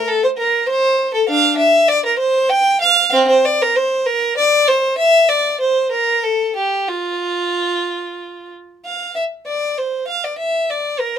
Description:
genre	classical, baroque-style suite movement for unaccompanied violin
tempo	90-100 BPM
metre	3/4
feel	rubato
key	F major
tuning	A4 = 441 Hz
part	rich violin	solo	0.0-11.2 s	C4 to G5	-14 LUFS	equal	none
room	light reverb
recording	minimal, uncompressed stereo recording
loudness	-14 LUFS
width	side -9 dB against mid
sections	0.0-8.8 A section; 8.8-11.2 B section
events	none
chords	none

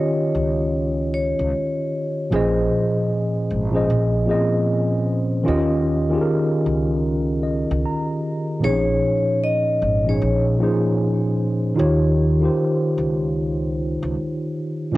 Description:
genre	lo-fi hip hop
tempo	76 BPM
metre	4/4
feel	swing 66% on 16ths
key	unclear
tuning	A4 = 436 Hz
part	vibraphone with hard mallets	melody	0.0-2.3, 8.6-10.4 s	Db5 to Eb5	-24 LUFS	left 2 dB	cassette tape
part	mellow tine electric piano	accompaniment	0.0-15.0 s	Bb2 to Bb5	-20 LUFS	equal	medium stereo tremolo, cassette tape
part	upright bass	bass	0.3-15.0 s	Ab1 to Eb2	-24 LUFS	equal	none
room	wet spring reverb, RT60 1.3 s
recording	home recording on cassette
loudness	-18 LUFS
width	side -18 dB against mid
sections	0.0-15.0 A section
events	none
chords	0.0 Eb9; 2.3 Bbm11; 5.5 Eb9; 8.6 Bbm11; 11.8 Eb9

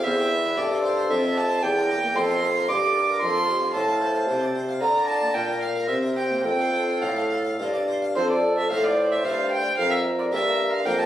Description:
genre	classical, baroque-style sonata movement with continuo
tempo	112 BPM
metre	3/4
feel	rubato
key	F major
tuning	A4 = 439 Hz
part	baroque flute	melody	0.0-11.1 s	G4 to D5	-30 LUFS	left 2 dB	none
part	warm violin	second line	0.0-11.1 s	C5 to D6	-24 LUFS	right 2 dB	none
part	harpsichord	accompaniment	0.0-11.1 s	E2 to F5	-31 LUFS	left 1 dB	none
part	mellow bassoon	bass	0.0-11.1 s	E2 to D3	-25 LUFS	equal	none
room	wet stone room reverb, RT60 1.2 s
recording	recorded on a phone in the room, studio reverb, compression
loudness	-20 LUFS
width	side -12 dB against mid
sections	0.0-8.2 A section; 8.2-11.1 B section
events	none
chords	0.0 C/E; 1.6 C7/E; 3.2 F; 4.8 Bb/D; 5.9 C7(no3); 6.4 F; 9.8 Gm7/F

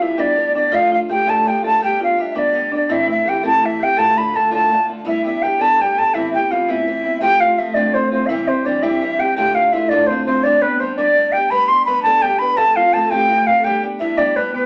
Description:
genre	celtic folk, Celtic jig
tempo	112 BPM (dotted quarters)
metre	6/8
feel	straight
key	unclear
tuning	A4 = 442 Hz
part	wooden flute	melody	0.0-14.7 s	B4 to C6	-18 LUFS	equal	none
part	buzzing marimba with medium hard mallets	second line	0.0-14.7 s	B3 to B4	-26 LUFS	equal	none
part	picked old ladder-braced acoustic guitar	accompaniment	0.0-14.7 s	D2 to G4	-27 LUFS	equal	none
room	wet small room reverb, RT60 0.5 s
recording	none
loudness	-17 LUFS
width	mono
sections	0.0-7.2 A section; 7.2-14.7 B section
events	none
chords	0.0 G; 0.7 Dm/F; 1.8 G; 2.9 Am; 4.0 Dm; 5.1 G; 6.1 Amadd9; 7.2 F; 8.3 C; 9.4 Dm; 10.4 G; 12.6 F; 13.7 G

